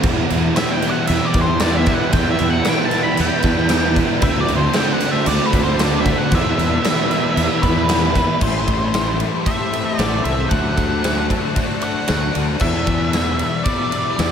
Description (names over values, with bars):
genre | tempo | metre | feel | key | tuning
rock, shoegaze and dream pop | 114 BPM | 4/4 | straight | E minor | A4 = 441 Hz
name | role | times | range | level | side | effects
evolving wavetable pad | sustained chords | 1.0-14.3 s | E4 to B5 | -27 LUFS | right 1 dB | ensemble chorus, built-in reverb
twelve-string electric guitar | arpeggios | 0.0-14.3 s | E3 to G4 | -29 LUFS | right 6 dB | none
crunchy overdriven guitar | riff | 0.0-8.4 s | D3 to F#4 | -24 LUFS | right 8 dB | reverse reverb
thick fuzz guitar | riff | 0.0-14.3 s | E2 to D4 | -23 LUFS | left 7 dB | distortion, ensemble chorus
fuzz fingered electric bass | bass | 0.0-14.3 s | A1 to E2 | -21 LUFS | equal | overdrive
huge arena drum kit | drums | 0.0-14.3 s | crash cymbal, kick drum, ride cymbal, snare drum | -21 LUFS | equal | none
octave-fuzz lead guitar | melody | 0.6-14.3 s | B4 to B5 | -22 LUFS | equal | distortion, ping-pong delay
room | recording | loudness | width
moderate huge ambient reverb, RT60 8.5 s | dreamy mix soaked in reverb | -15 LUFS | side -8 dB against mid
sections
0.0-8.4 A section; 8.4-14.3 B section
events
none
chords
0.0 Em7; 4.2 D5; 6.3 Em7; 8.4 Am7; 10.5 D7; 12.6 Em7